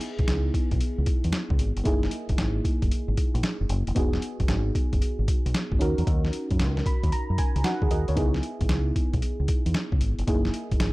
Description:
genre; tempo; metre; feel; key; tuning
R&B, new jack swing; 114 BPM; 4/4; swing 67% on 16ths; C# dorian; A4 = 440 Hz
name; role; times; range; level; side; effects
mellow FM electric piano; accompaniment; 0.0-10.9 s; A#3 to B5; -30 LUFS; equal; chorus
boom bap sampler-style drum kit; drums; 0.0-10.9 s; hi-hat, kick drum, snare drum; -25 LUFS; equal; none
deep dub fingered electric bass; bass; 0.2-10.9 s; E1 to F#2; -26 LUFS; equal; none
room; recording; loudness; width
digital ambience; dark, warm production; -23 LUFS; side -20 dB against mid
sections
0.0-10.9 A section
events
FM electric piano fill 6.6-8.2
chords
0.0 C#m7; 1.9 F#13; 4.0 Emaj7 (rootless); 5.8 D#m7; 8.2 C#m7; 10.3 F#13

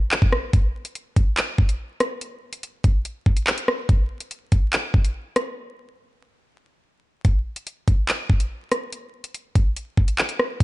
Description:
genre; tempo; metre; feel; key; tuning
hip hop; 143 BPM; 4/4; half-time; none; none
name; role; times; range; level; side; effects
drill drum kit; drums; 0.1-10.6 s; handclaps, hi-hat, kick drum, rim click; -19 LUFS; equal; overdrive
room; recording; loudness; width
little or no reverb; dark, warm production, vinyl crackle, nothing above 10.9 kHz; -20 LUFS; side -19 dB against mid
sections
0.0-10.6 A section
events
break 0.0-0.5, 5.6-7.2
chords
none

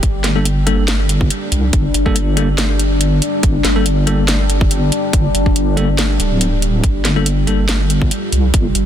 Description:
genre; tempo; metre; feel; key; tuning
deep dubstep; 141 BPM; 4/4; swing 54% on 16ths, half-time; G minor; A4 = 439 Hz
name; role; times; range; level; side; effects
deep dark ambient pad; sustained chords; 0.0-8.9 s; G3 to F4; -20 LUFS; left 1 dB; chorus, built-in reverb
deep soft wobble bass; bass; 0.0-8.9 s; D1 to C2; -16 LUFS; equal; chorus
electronic kick drum; drums; 0.0-8.6 s; none; -15 LUFS; equal; none
garage drum kit; drums; 0.0-8.8 s; hi-hat, snare drum; -21 LUFS; equal; none
bell-like tine electric piano; stabs; 0.4-7.6 s; G3 to A4; -23 LUFS; left 2 dB; fast stereo tremolo, dub echo
room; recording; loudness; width
little or no reverb; dense, heavily limited modern master; -13 LUFS; side -10 dB against mid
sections
0.0-8.9 A section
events
none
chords
0.0 Gmadd9

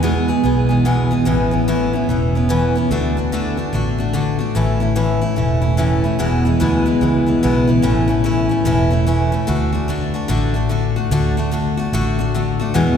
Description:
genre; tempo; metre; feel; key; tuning
honky-tonk and classic country; 146 BPM; 4/4; swing 63% on 8ths; A major; A4 = 440 Hz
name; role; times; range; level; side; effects
picked steel-string acoustic guitar; accompaniment; 0.0-13.0 s; E2 to G#4; -17 LUFS; left 1 dB; none
vintage muted fingered electric bass; bass; 0.0-13.0 s; E1 to E2; -19 LUFS; equal; none
room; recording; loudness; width
wet cathedral reverb, RT60 5.3 s; recorded in a church or concert hall; -15 LUFS; side -8 dB against mid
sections
0.0-7.8 A section; 7.8-13.0 B section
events
none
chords
0.0 E; 1.3 Aadd9; 2.9 D; 4.6 A; 6.2 E; 7.8 A; 9.5 D

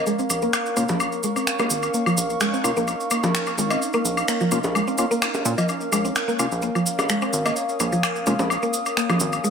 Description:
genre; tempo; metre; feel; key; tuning
minimal techno; 128 BPM; 4/4; swing 53% on 16ths; Bb minor; A4 = 440 Hz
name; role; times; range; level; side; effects
bubbling stepped-filter texture; texture; 0.0-9.5 s; Db4 to Db5; -34 LUFS; right 2 dB; chorus, built-in reverb
warbly tape-like pad; texture; 0.0-9.5 s; Bb4 to Eb6; -27 LUFS; equal; chorus, built-in reverb
mallet-like synth pluck; riff; 0.1-9.5 s; F3 to C4; -25 LUFS; equal; analog chorus, cassette tape, tape echo
cabasa; percussion; 0.1-9.5 s; none; -29 LUFS; right 2 dB; none
rubbery square bass; bass; 0.3-9.4 s; F1 to Bb2; -30 LUFS; equal; high-pass filter
woodblock, bongos and cowbell; percussion; 0.3-9.4 s; none; -27 LUFS; left 3 dB; none
electronic finger snaps; drums; 0.5-9.1 s; none; -28 LUFS; right 1 dB; none
percussive organ stab; stabs; 0.8-8.3 s; Bb3 to F4; -28 LUFS; left 2 dB; analog chorus, ping-pong delay
room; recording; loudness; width
wet plate reverb, RT60 1.9 s; none; -20 LUFS; side -6 dB against mid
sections
0.0-9.5 A section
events
filter sweep on synth arpeggio sound 0.0-9.5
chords
0.0 Bbm

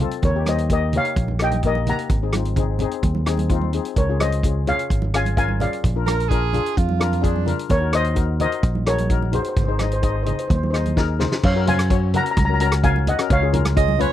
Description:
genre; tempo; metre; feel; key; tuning
calypso; 128 BPM; 4/4; straight; Db major; A4 = 439 Hz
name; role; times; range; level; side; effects
steel pan; accompaniment; 0.0-14.1 s; Bb3 to F5; -26 LUFS; left 13 dB; none
fingered electric bass; bass; 0.0-14.0 s; Ab1 to Gb2; -21 LUFS; equal; none
congas; percussion; 0.0-14.1 s; none; -29 LUFS; right 5 dB; none
warm soul drum kit; drums; 0.1-14.1 s; crash cymbal, hi-hat, kick drum, rim click, snare drum; -23 LUFS; equal; none
steel pan; melody; 0.2-14.1 s; Ab4 to Bb5; -24 LUFS; left 1 dB; none
bright alto saxophone; second line; 6.1-7.6, 13.8-14.1 s; D4 to Eb5; -24 LUFS; right 16 dB; none
room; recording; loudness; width
little or no reverb; dry, close 1970s-style studio recording; -18 LUFS; side -12 dB against mid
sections
0.0-11.4 A section; 11.4-14.1 B section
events
steel pan fill 0.0; drum fill 11.0-11.4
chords
0.2 Eb7; 2.1 Ab; 4.0 Db; 5.8 Bb7; 7.7 Ebm7; 9.6 Ab; 11.4 Gbmaj7; 13.3 Db7

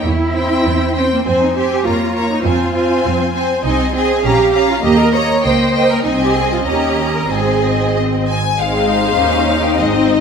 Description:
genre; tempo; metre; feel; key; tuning
quick classical-period movement for string orchestra; 99 BPM; 2/4; rubato; F minor, Ab major from 3.6 s; A4 = 440 Hz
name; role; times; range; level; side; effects
rich studio violin section; melody; 0.0-10.2 s; Eb5 to Bb5; -21 LUFS; left 6 dB; none
rich studio violin section; second line; 0.0-10.2 s; Ab3 to F5; -22 LUFS; left 3 dB; none
warm studio viola section; accompaniment; 0.0-10.2 s; Ab3 to Eb4; -17 LUFS; equal; none
rich symphonic double bass section; bass; 0.0-10.2 s; Ab1 to F2; -21 LUFS; right 4 dB; none
warm studio cello section; bass; 0.0-10.2 s; Eb2 to Db5; -18 LUFS; right 4 dB; none
room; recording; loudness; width
moderate scoring stage reverb, RT60 1.6 s; none; -12 LUFS; side -6 dB against mid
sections
0.0-8.6 A section; 8.6-10.2 B section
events
none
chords
0.0 C/E; 1.2 Fm; 1.9 Bbm/F; 2.4 Fm; 3.6 Ab/C; 4.2 Bbm; 4.8 Eb; 5.4 Eb7/Db; 6.0 Ab/C; 6.7 Eb7; 7.3 Ab; 9.2 Eb13

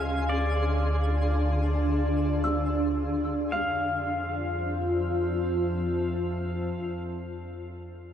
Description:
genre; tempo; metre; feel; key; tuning
ambient; 56 BPM; 4/4; straight; unclear; A4 = 440 Hz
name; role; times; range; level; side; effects
pedal steel guitar; melody; 0.0-7.0 s; D5 to F5; -34 LUFS; left 1 dB; tape echo
granular cloud pad; sustained chords; 0.0-7.5 s; D4 to E6; -29 LUFS; equal; built-in reverb
deep rumbling drone; bass; 0.0-6.7 s; D2 to F2; -29 LUFS; equal; built-in reverb
twinkling granular texture; texture; 0.0-3.6 s; Ab4 to C6; -38 LUFS; equal; built-in reverb
buzzing kalimba; arpeggios; 2.4-7.0 s; F5 to E6; -38 LUFS; left 1 dB; tape echo
room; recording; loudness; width
wet huge ambient reverb, RT60 8.2 s; dark, warm production; -25 LUFS; side -9 dB against mid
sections
0.0-3.5 A section; 3.5-7.8 B section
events
none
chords
0.0 Dm; 3.5 Fmaj7

